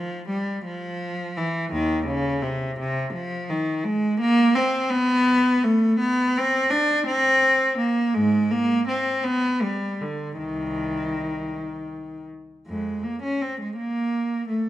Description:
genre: classical, baroque-style suite movement for unaccompanied cello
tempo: 55 BPM (dotted quarters)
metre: 6/8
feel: rubato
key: C minor from 3.8 s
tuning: A4 = 445 Hz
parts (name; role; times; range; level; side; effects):
- rich cello; solo; 0.0-14.7 s; C2 to D4; -21 LUFS; equal; none
room: moderate recital hall reverb, RT60 1.4 s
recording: minimal, uncompressed stereo recording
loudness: -21 LUFS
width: side -13 dB against mid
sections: 0.0-12.7 A section; 12.7-14.7 A section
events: none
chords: none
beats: 0.65 | 1.72 2.78 | 3.85 4.92 | 6.00 7.07 | 8.16 9.26 | 10.39 11.53 | 12.68 13.77

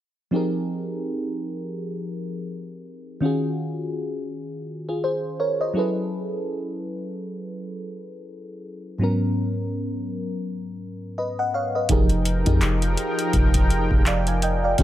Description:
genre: contemporary R&B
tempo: 83 BPM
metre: 4/4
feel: swing 58% on 16ths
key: unclear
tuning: A4 = 441 Hz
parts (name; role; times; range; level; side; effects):
- mellow FM electric piano; accompaniment; 0.3-14.8 s; Ab2 to Ab5; -25 LUFS; equal; chorus, phaser
- warm analog pad; sustained chords; 11.9-14.8 s; Eb3 to G5; -27 LUFS; equal; chorus, tremolo
- soft 808-style bass; bass; 11.9-14.8 s; Eb1 to F2; -23 LUFS; equal; none
- booming analog drum machine; drums; 11.9-14.8 s; handclaps, hi-hat, kick drum; -21 LUFS; equal; none
room: little or no reverb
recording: none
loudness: -22 LUFS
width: side -13 dB against mid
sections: 0.3-11.9 A section; 11.9-14.8 B section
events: none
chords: 0.3 Fm11; 3.2 Ebm11; 5.7 F#m11; 9.0 Abm11; 11.9 Fm11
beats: | 0.33 1.05 1.77 2.49 | 3.22 3.94 4.66 5.38 | 6.11 6.83 7.55 8.28 | 9.00 9.72 10.45 11.17 | 11.89 12.61 13.34 14.06 | 14.78

